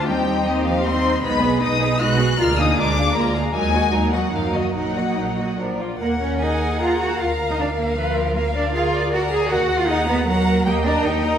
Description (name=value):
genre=quick classical-period movement for string orchestra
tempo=155 BPM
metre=3/4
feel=rubato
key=Eb minor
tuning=A4 = 440 Hz
part: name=rich chamber violin section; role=melody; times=0.0-11.4 s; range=F4 to Gb6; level=-26 LUFS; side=left 5 dB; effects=none
part: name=rich chamber violin section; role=second line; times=0.0-11.4 s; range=D4 to Bb5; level=-25 LUFS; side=left 1 dB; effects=none
part: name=rich chamber viola section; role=accompaniment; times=0.0-11.4 s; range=F3 to G5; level=-24 LUFS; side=equal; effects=none
part: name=clear chamber double bass section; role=bass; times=0.0-11.4 s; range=Bb1 to Gb2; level=-24 LUFS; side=right 1 dB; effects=none
part: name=rich symphonic cello section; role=bass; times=0.0-11.4 s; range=Eb3 to Ab4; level=-23 LUFS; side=right 2 dB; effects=none
room=wet recital hall reverb, RT60 1.6 s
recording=recorded in a church or concert hall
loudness=-17 LUFS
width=side -8 dB against mid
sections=0.0-6.0 A section; 6.0-11.4 B section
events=none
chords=0.1 Cm/Eb; 1.2 Abm/Cb; 2.4 Bb7/D; 3.5 Ebm; 4.3 Ebm/Gb; 4.7 Ebm/Bb; 5.6 Bb; 6.0 Ebm; 7.2 Bb/D; 8.4 Bb7/D; 9.5 Ebm; 10.7 Eb